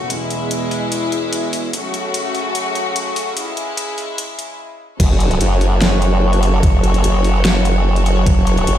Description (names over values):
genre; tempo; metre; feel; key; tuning
heavy wobble dubstep; 147 BPM; 4/4; half-time; F# minor; A4 = 440 Hz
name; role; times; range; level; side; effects
rich studio string section; sustained chords; 0.0-8.8 s; C#2 to C#5; -20 LUFS; equal; sidechain pumping
dubstep drum kit; drums; 0.1-8.8 s; crash cymbal, hi-hat, snare drum; -23 LUFS; equal; overdrive, high-pass filter on hats, small room ambience, high-pass filter on cymbals, high-pass filter on snare
formant-sweep wobble bass; bass; 5.0-8.8 s; F#1; -14 LUFS; equal; chorus, overdrive
electronic kick drum; drums; 5.0-8.3 s; none; -14 LUFS; equal; overdrive, small room ambience
room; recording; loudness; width
little or no reverb; played on a big sound system in a bare room, stone room reverb, high-pass filter; -14 LUFS; side -11 dB against mid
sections
0.0-5.0 A section; 5.0-8.8 B section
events
build-up 0.0-5.0; drop 5.0-8.8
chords
0.1 E; 1.7 F#m; 3.4 C#m; 5.0 F#m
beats
| 0.10 0.51 0.92 1.33 | 1.73 2.14 2.55 2.96 | 3.37 3.77 4.18 4.59 | 5.00 5.41 5.82 6.22 | 6.63 7.04 7.45 7.86 | 8.26 8.67